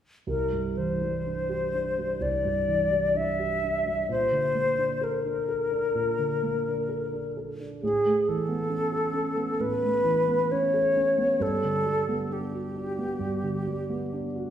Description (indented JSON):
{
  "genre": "classical, impressionist duo for flute and grand piano",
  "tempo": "61-69 BPM",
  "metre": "4/4",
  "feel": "rubato",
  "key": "C mixolydian",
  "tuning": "A4 = 436 Hz",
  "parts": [
    { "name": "mellow silver concert flute", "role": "melody", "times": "0.3-14.5 s", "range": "G4 to E5", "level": "-26 LUFS", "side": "left 1 dB", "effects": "none" },
    { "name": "dark concert grand piano", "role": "accompaniment", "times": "0.3-14.5 s", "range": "C2 to A4", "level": "-30 LUFS", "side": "right 3 dB", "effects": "none" }
  ],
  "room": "wet recital hall reverb, RT60 1.6 s",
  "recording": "heard from further back in the room",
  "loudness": "-24 LUFS",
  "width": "side -10 dB against mid",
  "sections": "0.3-14.5 A section",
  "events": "none",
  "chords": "0.3 Cadd9; 4.1 Bbmaj7; 7.8 Aadd9; 11.4 Gmaj7"
}